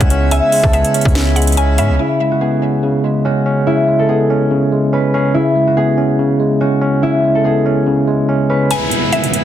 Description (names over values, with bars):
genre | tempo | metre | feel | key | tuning
hip hop, trap | 143 BPM | 4/4 | half-time | C# minor | A4 = 440 Hz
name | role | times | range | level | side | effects
concert harp | melody | 0.0-9.4 s | E4 to B5 | -17 LUFS | left 2 dB | tape echo
tine electric piano | accompaniment | 0.0-8.7 s | C#3 to C#4 | -15 LUFS | right 1 dB | medium stereo tremolo
pipe organ, plenum | sustained chords | 0.0-2.0, 8.7-9.4 s | C#3 to E4 | -22 LUFS | left 1 dB | none
hard-hitting 808-style bass | bass | 0.0-2.0 s | C#2 to G#2 | -14 LUFS | equal | none
trap drum kit | drums | 0.0-1.9, 8.7-9.4 s | hi-hat, kick drum, snare drum | -17 LUFS | equal | overdrive
mallet-like synth pluck | second line | 0.3-2.0, 8.7-9.4 s | E5 to G#5 | -23 LUFS | left 2 dB | chorus, tape echo
downlifter | sound effects | 8.7-9.4 s | none | -18 LUFS | right 2 dB | none
room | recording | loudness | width
light reverb | dense, heavily limited modern master | -12 LUFS | side -11 dB against mid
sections
0.0-2.0 A section; 2.0-8.7 B section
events
kick muted 8.7-9.4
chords
0.0 C#m7; 2.0 C#5; 8.7 C#m7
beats
| 0.31 0.73 1.15 1.57 | 1.99 2.41 2.83 3.25 | 3.67 4.09 4.51 4.93 | 5.35 5.77 6.19 6.61 | 7.03 7.45 7.87 8.29 | 8.71 9.12